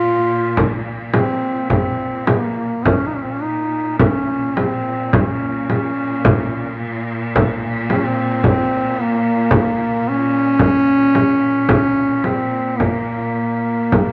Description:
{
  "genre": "caucasian folk, Caucasian lament",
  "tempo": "54 BPM",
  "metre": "3/4",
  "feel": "rubato",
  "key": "Bb minor",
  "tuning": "A4 = 439 Hz",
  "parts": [
    { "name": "mellow duduk", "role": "melody", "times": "0.0-14.1 s", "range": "Bb3 to F4", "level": "-20 LUFS", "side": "equal", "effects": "none" },
    { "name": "clear chamber string section", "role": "drone", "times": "0.0-14.1 s", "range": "Bb2", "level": "-27 LUFS", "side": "equal", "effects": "none" },
    { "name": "frame drum", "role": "percussion", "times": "0.6-14.1 s", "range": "none", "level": "-19 LUFS", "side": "equal", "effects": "none" }
  ],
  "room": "moderate large studio reverb, RT60 1.4 s",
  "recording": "none",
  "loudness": "-18 LUFS",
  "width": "mono",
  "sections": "0.0-14.1 A section",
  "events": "none",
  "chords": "none"
}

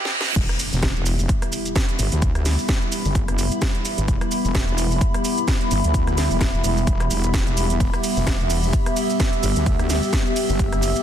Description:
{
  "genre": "bass house",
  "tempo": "129 BPM",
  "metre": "4/4",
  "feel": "swing 56% on 16ths",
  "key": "E minor",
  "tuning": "A4 = 441 Hz",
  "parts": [
    { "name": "reverse cymbal and impact", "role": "sound effects", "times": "0.0-2.2 s", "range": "none", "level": "-28 LUFS", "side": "right 2 dB", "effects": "none" },
    { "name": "house drum kit", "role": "drums", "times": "0.1-11.0 s", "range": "crash cymbal, hi-hat, ride cymbal, rim click, shaker, snare drum", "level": "-26 LUFS", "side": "right 1 dB", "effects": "none" },
    { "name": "dark analog pad", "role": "sustained chords", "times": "1.0-11.0 s", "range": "G3 to G4", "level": "-28 LUFS", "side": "left 1 dB", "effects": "chorus, sidechain pumping" },
    { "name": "wobble bass", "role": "bass", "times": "0.4-10.9 s", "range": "E1 to D2", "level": "-22 LUFS", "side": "equal", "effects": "chorus, overdrive, sidechain pumping, high-pass filter" },
    { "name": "electronic kick drum", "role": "drums", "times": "0.4-10.7 s", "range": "none", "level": "-22 LUFS", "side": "equal", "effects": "none" },
    { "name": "warbly tape-like pad", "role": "texture", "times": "0.6-11.0 s", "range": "B3 to E6", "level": "-27 LUFS", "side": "equal", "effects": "chorus, built-in reverb, sidechain pumping" }
  ],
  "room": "light reverb, digital ambience",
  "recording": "dense, heavily limited modern master, high-pass filter",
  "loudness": "-18 LUFS",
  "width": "side -10 dB against mid",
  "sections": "0.4-11.0 A section",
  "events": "drum fill 0.0-0.4; reverse cymbal 0.0-0.4; stop 0.0-0.4; drop 0.4-11.0; impact 0.4-2.2",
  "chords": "0.4 Em"
}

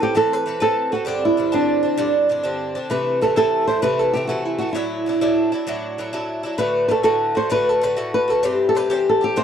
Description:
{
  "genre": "celtic folk, Celtic slide",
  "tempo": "130 BPM (dotted quarters)",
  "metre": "12/8",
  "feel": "straight",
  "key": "unclear",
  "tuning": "A4 = 440 Hz",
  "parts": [
    { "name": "flamenco guitar", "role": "melody", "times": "0.0-9.4 s", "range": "D4 to C5", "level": "-19 LUFS", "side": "right 1 dB", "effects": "none" },
    { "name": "Irish bouzouki", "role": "accompaniment", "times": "0.0-9.4 s", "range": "G2 to B4", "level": "-23 LUFS", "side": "equal", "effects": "none" }
  ],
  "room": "light reverb",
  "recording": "dry, close 1970s-style studio recording",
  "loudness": "-17 LUFS",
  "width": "side -8 dB against mid",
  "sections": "0.0-9.4 A section",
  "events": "none",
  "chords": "0.0 Amadd9; 1.1 Csus2; 2.9 Am; 4.7 Dadd9; 6.6 D; 8.4 C"
}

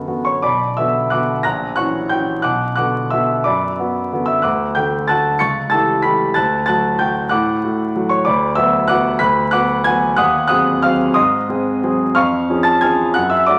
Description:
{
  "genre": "classical, piano waltz",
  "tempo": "155-200 BPM",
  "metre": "3/4",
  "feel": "rubato",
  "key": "B minor",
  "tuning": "A4 = 438 Hz",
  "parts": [
    { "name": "warm concert grand piano", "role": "solo", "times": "0.0-13.6 s", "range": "A#1 to C#7", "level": "-17 LUFS", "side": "equal", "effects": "none" }
  ],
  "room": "wet recital hall reverb, RT60 1.5 s",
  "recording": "vinyl crackle",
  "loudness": "-17 LUFS",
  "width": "mono",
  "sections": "0.4-13.6 A section",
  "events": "none",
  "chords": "0.4 Bm; 1.4 F#7/A#; 2.5 Bm; 4.4 D; 5.4 A7/C#; 6.4 D; 8.3 Bm/D; 10.2 G#7/D#; 12.2 C#/E#"
}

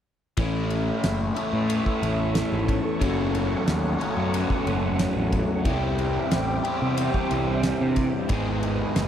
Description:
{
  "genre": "psychedelic rock",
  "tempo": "91 BPM",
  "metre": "4/4",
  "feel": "straight",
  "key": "A lydian",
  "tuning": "A4 = 440 Hz",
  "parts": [
    { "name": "soft string machine", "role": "sustained chords", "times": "0.4-9.1 s", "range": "A4 to D#6", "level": "-34 LUFS", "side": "right 3 dB", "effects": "ensemble chorus" },
    { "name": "raw garage guitar", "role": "riff", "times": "0.4-9.1 s", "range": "F#2 to G#4", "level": "-25 LUFS", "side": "left 1 dB", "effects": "overdrive, phaser" },
    { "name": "fuzz picked electric bass", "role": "bass", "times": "0.4-9.1 s", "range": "F#1 to C3", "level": "-27 LUFS", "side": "equal", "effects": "overdrive" },
    { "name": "overtone-sweeping drone", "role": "drone", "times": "1.4-9.1 s", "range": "A1 to E2", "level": "-34 LUFS", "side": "equal", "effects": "chorus, built-in reverb, phaser" },
    { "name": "damped 70s drum kit", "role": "drums", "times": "0.4-9.1 s", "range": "kick drum, ride cymbal, snare drum", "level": "-28 LUFS", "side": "equal", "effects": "none" }
  ],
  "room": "little or no reverb",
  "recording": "dry, close 1970s-style studio recording",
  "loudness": "-22 LUFS",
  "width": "side -9 dB against mid",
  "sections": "0.4-9.1 A section",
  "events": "none",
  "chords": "0.4 A; 3.0 F#m; 5.7 Cadd9; 8.3 G#m"
}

